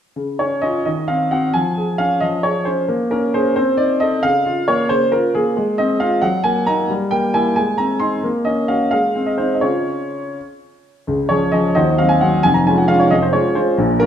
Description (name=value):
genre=classical-period piano sonatina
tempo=89 BPM (dotted quarters)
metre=6/8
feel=rubato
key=Db major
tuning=A4 = 443 Hz
part: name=clear concert grand piano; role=solo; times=0.2-14.1 s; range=F1 to C6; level=-15 LUFS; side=equal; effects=none
room=wet recital hall reverb, RT60 1.5 s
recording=minimal, uncompressed stereo recording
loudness=-15 LUFS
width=side -9 dB against mid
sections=0.2-11.1 A section; 11.1-14.1 B section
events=none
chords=0.2 Db; 0.9 Cdim/Eb; 1.5 Db/F; 2.9 Bbm7; 3.6 Adim/C; 4.2 Bbm/Db; 5.6 Fm/Ab; 6.2 Ebm/Gb; 6.9 Gm6; 7.6 Ab; 8.2 Gb/Bb; 8.9 Ab; 9.6 Db; 11.8 Cdim/Eb; 12.4 Db/F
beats=| 0.16 0.85 | 1.54 2.22 | 2.88 3.56 | 4.23 4.89 | 5.56 6.22 | 6.90 7.57 | 8.23 8.92 | 9.63 10.36 | 11.08 11.77 | 12.45 13.12 | 13.79